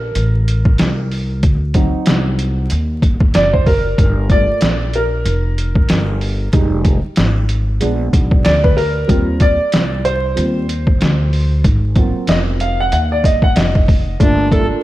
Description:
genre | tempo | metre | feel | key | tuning
hip hop, jazz-hop | 94 BPM | 4/4 | swing 59% on 16ths | G minor | A4 = 440 Hz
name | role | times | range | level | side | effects
dark concert grand piano | accompaniment | 0.0-14.8 s | F#3 to Gb5 | -19 LUFS | right 1 dB | wide subtle chorus
upright bass | bass | 0.0-14.7 s | F1 to Eb2 | -17 LUFS | equal | none
trip hop sampler-style drum kit | drums | 0.2-14.7 s | hi-hat, kick drum, snare drum | -14 LUFS | equal | overdrive
dark viola | melody | 14.2-14.7 s | D4 to A4 | -16 LUFS | equal | diffuse ambient delay
room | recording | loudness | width
light reverb, studio reverb | vinyl crackle | -12 LUFS | side -16 dB against mid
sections
0.0-14.2 A section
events
grand piano solo 0.0-14.2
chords
0.0 C7(no3); 1.4 D7b9; 4.0 Gm9; 6.5 Fm7; 7.8 Bb7b9; 9.1 Eb6; 11.6 Ab13; 14.2 Gm9

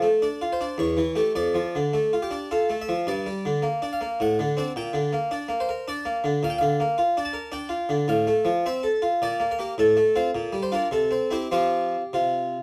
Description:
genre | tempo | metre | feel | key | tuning
classical, baroque-style suite movement for harpsichord | 107 BPM | 3/4 | rubato | F major from 6.4 s | A4 = 437 Hz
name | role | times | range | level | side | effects
harpsichord | solo | 0.0-12.6 s | E2 to A5 | -24 LUFS | equal | none
room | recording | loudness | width
moderate studio ambience, RT60 0.4 s | dark, warm production | -25 LUFS | mono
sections
0.0-12.6 A section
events
none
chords
0.0 Dm; 0.8 A7/E; 1.4 Dm/F; 3.1 Gm; 4.2 D7/A; 4.8 Gm/Bb; 6.4 Bb; 8.1 F/A; 9.2 Gm/Bb; 9.8 F/A; 10.3 Gm7/Bb; 10.9 C; 11.5 F5

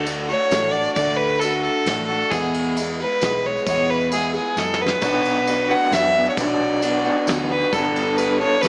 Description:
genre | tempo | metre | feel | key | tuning
folk rock and heartland rock | 133 BPM | 3/4 | straight | D major | A4 = 442 Hz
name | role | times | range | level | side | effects
rich fiddle | melody | 0.0-8.7 s | G#4 to F#5 | -23 LUFS | equal | slapback echo
picked twelve-string acoustic guitar | accompaniment | 0.0-8.7 s | E2 to A4 | -27 LUFS | equal | none
hollow-body short-scale fingered electric bass | bass | 0.0-8.7 s | G1 to F#2 | -36 LUFS | equal | none
soft brush drum kit | drums | 0.1-8.7 s | crash cymbal, kick drum, ride cymbal, snare drum | -30 LUFS | equal | none
tambourine | percussion | 0.1-8.7 s | none | -39 LUFS | equal | none
electric guitar through a small old amp | riff | 5.0-8.7 s | B2 to A4 | -26 LUFS | equal | tremolo
room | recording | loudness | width
light reverb, studio reverb | small speaker sound | -20 LUFS | mono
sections
0.0-8.7 A section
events
drum fill 4.6-5.0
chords
0.0 D; 2.3 E; 5.0 Bm; 7.7 Gadd9

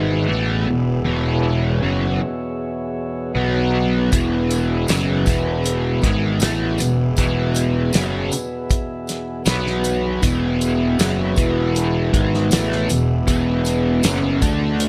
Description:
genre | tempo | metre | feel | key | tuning
psychedelic rock | 79 BPM | 4/4 | straight | E mixolydian | A4 = 440 Hz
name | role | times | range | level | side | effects
mellow tonewheel organ | sustained chords | 0.0-14.9 s | D3 to F#5 | -30 LUFS | equal | slow rotary speaker
cranked stack guitar | riff | 0.0-14.9 s | E2 to D4 | -22 LUFS | equal | overdrive, rotary speaker
fuzz picked electric bass | bass | 0.0-14.9 s | E1 to D2 | -25 LUFS | equal | overdrive
pedal harmonium | drone | 0.0-14.9 s | E2 to B2 | -31 LUFS | equal | none
cloth-damped thuddy drum kit | drums | 4.1-14.9 s | hi-hat, kick drum, snare drum | -23 LUFS | equal | none
tambourine | percussion | 4.1-14.6 s | none | -36 LUFS | equal | none
room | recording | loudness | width
light reverb, small room ambience | lossy compression artefacts | -19 LUFS | mono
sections
0.0-14.9 A section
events
none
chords
0.0 E; 3.4 B5; 4.1 E; 9.5 B5; 10.2 E

